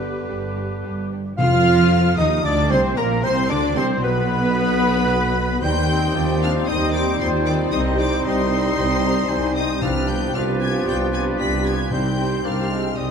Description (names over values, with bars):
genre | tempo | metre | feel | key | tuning
classical, dramatic, fast romantic movement for symphony orchestra | 114 BPM | 4/4 | straight | C minor | A4 = 440 Hz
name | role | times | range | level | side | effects
rich symphonic violin section | melody | 0.0-13.1 s | B4 to B6 | -29 LUFS | left 4 dB | none
clear oboe | second line | 0.0-13.1 s | Bb4 to F5 | -31 LUFS | equal | none
hollow small flute group | second line | 0.0-13.1 s | F5 to F6 | -31 LUFS | left 2 dB | none
rich symphonic violin section | second line | 0.0-13.1 s | G3 to B5 | -32 LUFS | left 3 dB | none
warm clarinet | second line | 0.0-13.1 s | C4 to F5 | -30 LUFS | left 1 dB | none
clear symphonic viola section | accompaniment | 0.0-13.1 s | Bb3 to G4 | -27 LUFS | right 1 dB | none
warm bassoon | accompaniment | 0.0-13.1 s | D3 to F4 | -28 LUFS | equal | none
mellow French horn section | sustained chords | 0.0-13.1 s | G3 to F4 | -27 LUFS | left 4 dB | none
clear studio cello section | bass | 0.0-13.1 s | G2 to F3 | -26 LUFS | right 2 dB | none
rich symphonic double bass section | bass | 0.0-13.1 s | G1 to F2 | -26 LUFS | right 2 dB | none
warm trumpet | stabs | 1.4-13.1 s | Bb4 to F5 | -29 LUFS | equal | none
mellow tuba | bass | 1.4-13.1 s | Bb1 to F2 | -26 LUFS | right 2 dB | none
timpani | percussion | 1.4-2.1, 9.8-12.7 s | C3 | -27 LUFS | left 2 dB | none
room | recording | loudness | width
moderate scoring stage reverb, RT60 1.9 s | dark, warm production | -17 LUFS | side -6 dB against mid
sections
0.0-1.4 A section; 1.4-13.1 B section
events
none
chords
0.0 G; 1.4 Cm; 3.5 Bm; 5.6 Cm/Eb; 7.7 Cm; 9.8 G7/C; 11.9 Cm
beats
0.29 0.84 | 1.39 1.92 2.45 2.98 | 3.50 4.03 4.56 5.08 | 5.62 6.15 6.67 7.20 | 7.72 8.25 8.77 9.29 | 9.82 10.34 10.86 11.39 | 11.91 12.44 12.96